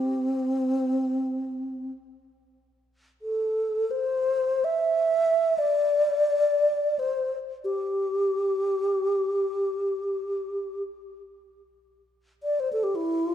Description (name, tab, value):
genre	world meditative, free-time meditation music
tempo	free time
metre	none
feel	none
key	C major pentatonic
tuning	A4 = 440 Hz
part	breathy bass flute	solo	0.0-13.3 s	C4 to E5	-24 LUFS	equal	none
room	wet recital hall reverb, RT60 1.4 s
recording	cassette tape, faint mains hum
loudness	-23 LUFS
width	side -10 dB against mid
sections	0.0-2.2 A section; 2.2-13.3 A section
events	none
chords	none